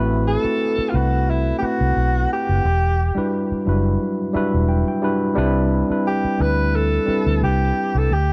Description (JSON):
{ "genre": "lush 1970s-style soul", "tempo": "88 BPM", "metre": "4/4", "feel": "swing 54% on 16ths", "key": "unclear", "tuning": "A4 = 440 Hz", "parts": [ { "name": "tine electric piano", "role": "accompaniment", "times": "0.0-8.1 s", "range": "F#3 to G5", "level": "-23 LUFS", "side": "equal", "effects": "overdrive" }, { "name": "vintage muted fingered electric bass", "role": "bass", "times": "0.0-8.3 s", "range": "E1 to D2", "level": "-22 LUFS", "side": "equal", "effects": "none" }, { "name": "warm alto saxophone", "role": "melody", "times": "0.3-8.3 s", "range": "E4 to B4", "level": "-25 LUFS", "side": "equal", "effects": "tape echo" } ], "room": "little or no reverb", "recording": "none", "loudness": "-20 LUFS", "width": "mono", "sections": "0.0-8.3 A section", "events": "tine electric piano fill 4.0-5.4", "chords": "0.0 Am69; 2.6 Em9; 5.4 Cmaj9" }